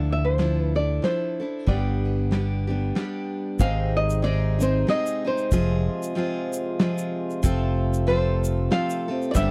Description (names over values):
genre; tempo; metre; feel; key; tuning
acoustic folk duo or small band; 94 BPM; 3/4; swing 58% on 8ths; unclear; A4 = 440 Hz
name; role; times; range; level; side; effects
flamenco guitar; melody; 0.0-9.5 s; C5 to F5; -29 LUFS; equal; none
picked steel-string acoustic guitar; accompaniment; 0.0-9.5 s; G2 to A4; -30 LUFS; equal; none
mellow fretless electric bass; bass; 0.0-9.5 s; F1 to D2; -26 LUFS; equal; none
soft brush drum kit; drums; 0.4-9.5 s; hi-hat, kick drum, ride cymbal, snare drum; -26 LUFS; equal; none
hand-pumped harmonium; sustained chords; 3.6-9.5 s; C3 to G4; -35 LUFS; equal; none
tube shaker; percussion; 3.6-9.5 s; none; -41 LUFS; equal; none
room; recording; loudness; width
little or no reverb; dry, close 1970s-style studio recording; -24 LUFS; mono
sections
0.0-3.6 A section; 3.6-9.5 B section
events
none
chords
0.0 Dmadd9; 1.7 G; 3.6 Ab; 5.5 Fm; 7.4 F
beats
0.39 1.03 | 1.67 2.31 2.95 | 3.59 4.23 4.88 | 5.51 6.16 6.80 | 7.44 8.08 8.72 | 9.36